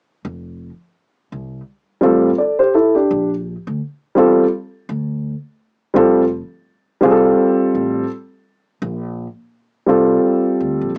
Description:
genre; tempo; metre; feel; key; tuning
hip hop; 84 BPM; 4/4; swing 58% on 16ths; F major; A4 = 440 Hz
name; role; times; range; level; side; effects
upright bass; bass; 0.2-11.0 s; F1 to E2; -29 LUFS; equal; transformer saturation
dark concert grand piano; accompaniment; 2.0-10.9 s; G3 to D5; -15 LUFS; equal; cassette tape
room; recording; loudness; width
light reverb; home recording on cassette, small speaker sound; -16 LUFS; mono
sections
0.2-11.0 A section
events
none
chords
0.2 Fadd9; 3.1 Bbmaj7; 6.0 Fadd9; 8.8 Bbmaj7(no3)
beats
| 0.24 0.96 1.67 2.39 | 3.10 3.81 4.53 5.24 | 5.96 6.67 7.39 8.10 | 8.81 9.53 10.24 10.96

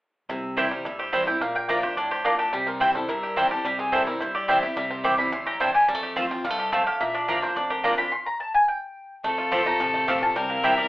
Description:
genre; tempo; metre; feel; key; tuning
bluegrass; 214 BPM; 4/4; straight; C mixolydian; A4 = 440 Hz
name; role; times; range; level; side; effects
bluegrass banjo; melody; 0.3-10.9 s; F3 to G4; -28 LUFS; right 1 dB; slapback echo
picked steel-string acoustic guitar; accompaniment; 0.3-10.9 s; F2 to F4; -32 LUFS; equal; none
upright bass; bass; 0.3-10.9 s; F1 to G2; -45 LUFS; equal; none
mandolin; stabs; 0.6-10.7 s; Bb3 to Bb5; -23 LUFS; right 1 dB; none
mandolin; melody; 1.0-10.9 s; G4 to D6; -26 LUFS; equal; none
clear fiddle; second line; 9.2-10.9 s; A4 to Bb4; -26 LUFS; left 2 dB; none
room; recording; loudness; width
wet studio ambience, RT60 0.5 s; heard from further back in the room, telephone sound; -22 LUFS; side -18 dB against mid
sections
0.3-9.2 A section; 9.2-10.9 B section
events
none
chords
0.3 C; 1.4 Bb; 2.5 C; 5.9 F; 7.0 Bb; 8.1 N.C.; 9.2 F; 10.4 C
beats
| 0.29 0.57 0.85 1.13 | 1.41 1.69 1.97 2.25 | 2.53 2.81 3.09 3.37 | 3.65 3.93 4.21 4.49 | 4.77 5.05 5.33 5.61 | 5.89 6.17 6.45 6.73 | 7.00 7.29 7.57 7.84 | 8.12 8.40 8.68 8.96 | 9.24 9.52 9.80 10.08 | 10.36 10.64

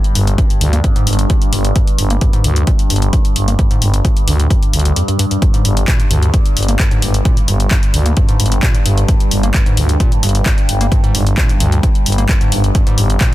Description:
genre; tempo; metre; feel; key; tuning
driving peak-time techno; 131 BPM; 4/4; straight; G phrygian; A4 = 440 Hz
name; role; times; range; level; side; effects
overtone-sweeping drone; drone; 0.0-13.3 s; G2; -21 LUFS; equal; chorus, built-in reverb, phaser, sidechain pumping
punchy analog drum machine; drums; 0.0-13.3 s; handclaps, hi-hat; -21 LUFS; left 1 dB; sidechain pumping on hats
overdriven acid bass; riff; 0.2-13.3 s; G1 to Bb3; -19 LUFS; equal; sidechain pumping, tape echo
growling FM bass; bass; 0.2-13.2 s; G1 to D2; -14 LUFS; equal; sidechain pumping
electronic kick drum; drums; 0.4-13.3 s; none; -14 LUFS; equal; none
room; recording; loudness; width
little or no reverb; dense, heavily limited modern master; -11 LUFS; side -16 dB against mid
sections
0.0-13.3 A section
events
filter sweep on acid bass 0.0-13.3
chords
none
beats
0.38 0.84 1.30 | 1.76 2.21 2.67 3.13 | 3.59 4.05 4.50 4.96 | 5.42 5.88 6.34 6.79 | 7.25 7.71 8.17 8.63 | 9.09 9.54 10.00 10.46 | 10.92 11.38 11.83 12.29 | 12.75 13.21

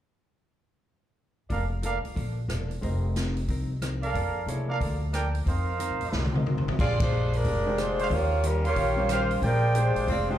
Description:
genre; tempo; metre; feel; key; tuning
jazz, big band swing; 182 BPM; 4/4; swing 64% on 8ths; Bb major, Bb mixolydian from 6.8 s; A4 = 440 Hz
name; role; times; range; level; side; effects
vintage hollow-body jazz guitar; accompaniment; 1.5-10.3 s; Bb2 to C5; -38 LUFS; left 3 dB; slapback echo
mellow trumpet section; stabs; 1.5-2.0, 4.0-10.3 s; G4 to C6; -31 LUFS; right 4 dB; slapback echo
upright bass; bass; 1.5-10.4 s; E1 to C3; -28 LUFS; equal; none
swinging big-band drum kit; drums; 1.5-10.2 s; crash cymbal, hi-hat, kick drum, ride cymbal, rim click, snare drum, toms; -31 LUFS; equal; none
clear concert grand piano; accompaniment; 2.8-10.4 s; G3 to Eb5; -35 LUFS; right 1 dB; slapback echo
clear saxophone section; melody; 6.8-10.4 s; G3 to D5; -27 LUFS; equal; slapback echo
room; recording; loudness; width
light reverb, studio reverb; live gig heard through the venue's PA, club reverb; -24 LUFS; side -11 dB against mid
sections
1.5-6.8 A section; 6.8-10.4 B section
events
drum fill 6.1-6.8; band accent 7.0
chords
1.5 Bbmaj7/F; 2.8 F7sus4; 4.1 Bbmaj7/F; 5.5 F7sus4; 6.8 Bb13; 8.1 Eb13; 9.4 Bb13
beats
| 1.50 1.83 2.17 2.50 | 2.83 3.16 3.49 3.82 | 4.15 4.48 4.81 5.14 | 5.47 5.80 6.13 6.46 | 6.79 7.12 7.45 7.77 | 8.10 8.43 8.76 9.09 | 9.42 9.75 10.08

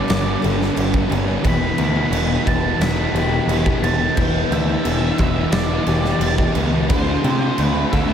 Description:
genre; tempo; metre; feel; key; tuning
rock, shoegaze and dream pop; 88 BPM; 4/4; straight; E minor; A4 = 440 Hz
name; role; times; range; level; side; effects
octave-fuzz lead guitar; melody; 0.0-8.1 s; C5 to B5; -26 LUFS; right 2 dB; distortion, ping-pong delay
picked twelve-string acoustic guitar; arpeggios; 0.0-8.1 s; E3 to A4; -28 LUFS; left 8 dB; wide subtle chorus, ping-pong delay
overdriven electric guitar; riff; 0.0-8.1 s; G2 to F#4; -23 LUFS; right 8 dB; reverse reverb
thick fuzz guitar; riff; 0.0-8.1 s; E2 to D4; -23 LUFS; left 8 dB; distortion, lush chorus
growling picked electric bass; bass; 0.1-8.1 s; E1 to C3; -22 LUFS; equal; overdrive
huge arena drum kit; drums; 0.1-8.1 s; crash cymbal, kick drum, snare drum; -24 LUFS; equal; none
room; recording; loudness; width
moderate plate reverb, RT60 3.6 s; dreamy mix soaked in reverb; -16 LUFS; side -8 dB against mid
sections
0.0-8.1 A section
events
none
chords
0.0 Gadd9; 1.4 Em7; 6.9 Dsus2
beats
0.08 0.76 | 1.45 2.13 2.81 3.49 | 4.17 4.86 5.54 6.22 | 6.90 7.58

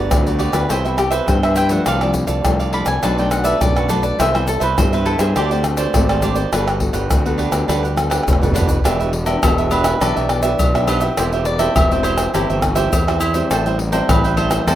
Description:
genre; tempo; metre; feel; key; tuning
samba and choro; 103 BPM; 4/4; straight; G major, E minor from 8.9 s; A4 = 438 Hz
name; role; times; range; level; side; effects
cavaquinho; accompaniment; 0.0-14.8 s; D4 to G5; -22 LUFS; right 7 dB; plate reverb
nylon-string guitar; accompaniment; 0.0-14.8 s; F#2 to A4; -24 LUFS; left 4 dB; plate reverb
fuzz fingered electric bass; bass; 0.0-14.8 s; E1 to G2; -20 LUFS; equal; overdrive
egg shaker, surdo, pandeiro, tamborim and agogo bells; percussion; 0.1-14.8 s; none; -19 LUFS; left 1 dB; none
cavaquinho; melody; 0.4-14.8 s; E4 to B5; -23 LUFS; left 1 dB; plate reverb
room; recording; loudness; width
light reverb; rough home demo mix; -14 LUFS; side -12 dB against mid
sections
0.0-8.9 A section; 8.9-14.8 B section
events
cavaquinho solo 0.0-8.9; drum fill 8.1-8.9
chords
0.0 Gmaj7; 0.7 Cmaj7; 1.9 F6/C; 3.0 Bm7; 4.2 Cmaj7; 5.4 D7sus4; 6.5 Gmaj9; 8.9 Em7; 11.2 C/E; 13.5 Am7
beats
0.12 0.70 1.28 | 1.87 2.45 3.03 3.61 | 4.20 4.78 5.36 5.94 | 6.52 7.11 7.69 8.27 | 8.85 9.43 10.02 10.60 | 11.18 11.76 12.34 12.93 | 13.51 14.09 14.67

